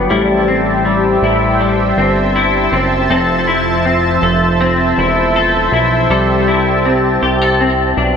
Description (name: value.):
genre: dream pop.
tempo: 80 BPM.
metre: 4/4.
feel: straight.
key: unclear.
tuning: A4 = 438 Hz.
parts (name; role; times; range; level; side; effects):
lush unison pad; sustained chords; 0.0-8.2 s; F3 to A5; -15 LUFS; right 1 dB; chorus.
semi-hollow electric guitar; arpeggios; 0.0-8.2 s; G3 to A4; -14 LUFS; left 2 dB; ensemble chorus, digital delay.
fat analog bass; bass; 0.0-8.2 s; E1 to C2; -18 LUFS; equal; none.
room: moderate plate reverb, RT60 2.6 s.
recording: none.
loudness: -11 LUFS.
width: side -7 dB against mid.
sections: 0.0-8.2 A section.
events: none.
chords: 0.1 Am7; 3.1 Fmaj7; 6.1 C6.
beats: | 0.10 0.85 1.60 2.35 | 3.10 3.85 4.61 5.36 | 6.11 6.86 7.61.